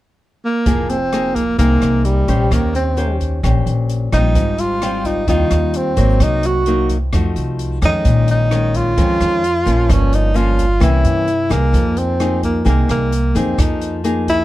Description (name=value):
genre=bossa nova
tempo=130 BPM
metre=4/4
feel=straight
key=F minor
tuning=A4 = 439 Hz
part: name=breathy tenor saxophone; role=melody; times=0.4-14.4 s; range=G3 to Gb4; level=-18 LUFS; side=right 1 dB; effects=none
part: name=nylon-string guitar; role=accompaniment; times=0.7-14.4 s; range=F2 to C5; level=-20 LUFS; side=left 3 dB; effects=none
part: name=upright bass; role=bass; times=0.7-14.4 s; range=F1 to G2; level=-17 LUFS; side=equal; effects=none
part: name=open jazz drum kit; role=drums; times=0.7-14.4 s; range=hi-hat, kick drum, rim click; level=-22 LUFS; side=equal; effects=none
room=little or no reverb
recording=dark, warm production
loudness=-14 LUFS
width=side -16 dB against mid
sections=0.7-14.4 A section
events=none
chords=0.0 N.C.; 0.7 Fm11; 2.5 Eb13; 4.4 Abmaj13; 6.2 Cm7b5; 7.1 F7b9; 8.0 Bbm7; 9.9 Gm7b5; 10.8 C7b9; 11.7 Fm7